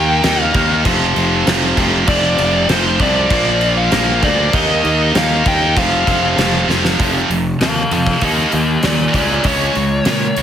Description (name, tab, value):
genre	hard rock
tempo	98 BPM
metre	4/4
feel	straight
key	unclear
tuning	A4 = 441 Hz
part	bluesy overdriven lead guitar	melody	0.0-10.4 s	F4 to G5	-18 LUFS	left 2 dB	distortion, slapback echo
part	tonewheel organ	sustained chords	0.0-7.0 s	F3 to C5	-26 LUFS	right 1 dB	slow rotary speaker
part	high-gain distorted guitar	riff	0.0-10.4 s	F2 to Eb4	-16 LUFS	right 1 dB	distortion
part	fuzz fingered electric bass	bass	0.0-10.4 s	F1 to Bb2	-19 LUFS	equal	overdrive
part	gated 80s drum kit	drums	0.2-10.4 s	crash cymbal, hi-hat, kick drum, snare drum	-19 LUFS	equal	none
room	small room ambience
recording	heavily compressed radio sound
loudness	-12 LUFS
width	side -9 dB against mid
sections	0.0-7.0 A section; 7.0-10.4 B section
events	drum fill 6.7-7.0; lead electric guitar solo 7.0-10.4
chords	0.0 Eb; 0.9 F5; 3.3 Bb; 4.5 Eb; 5.8 F5; 7.0 F; 8.2 Eb; 9.1 Db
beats	0.25 0.86 1.47 | 2.09 2.70 3.31 3.93 | 4.54 5.16 5.77 6.38 | 7.00 7.61 8.22 8.84 | 9.45 10.07